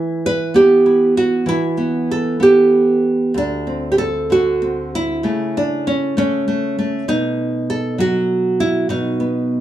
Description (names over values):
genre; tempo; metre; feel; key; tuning
folk, solo fingerstyle acoustic guitar; 65 BPM (dotted quarters); 6/8; rubato; E minor; A4 = 440 Hz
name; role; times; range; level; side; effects
nylon-string guitar; solo; 0.0-9.6 s; D2 to B4; -14 LUFS; right 1 dB; none
room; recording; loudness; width
light reverb; none; -14 LUFS; side -12 dB against mid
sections
0.0-9.6 A section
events
none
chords
0.0 Emadd9; 3.4 D7; 5.2 A/C#; 7.1 B